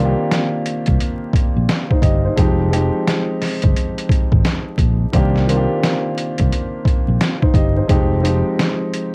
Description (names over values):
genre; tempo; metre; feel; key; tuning
hip hop, boom-bap hip-hop; 87 BPM; 4/4; swing 63% on 16ths; C minor; A4 = 440 Hz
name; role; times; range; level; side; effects
dark grand piano; accompaniment; 0.0-9.1 s; Eb3 to Eb5; -23 LUFS; equal; none
fretless electric bass; bass; 0.0-8.4 s; F1 to C2; -20 LUFS; equal; none
trip hop sampler-style drum kit; drums; 0.3-9.1 s; hi-hat, kick drum, snare drum; -20 LUFS; equal; overdrive, cassette tape
room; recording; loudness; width
little or no reverb; home recording on cassette, vinyl crackle; -17 LUFS; mono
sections
0.0-9.1 A section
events
none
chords
0.0 Cm9; 2.4 Fm9; 5.1 Cm9; 7.9 Fm9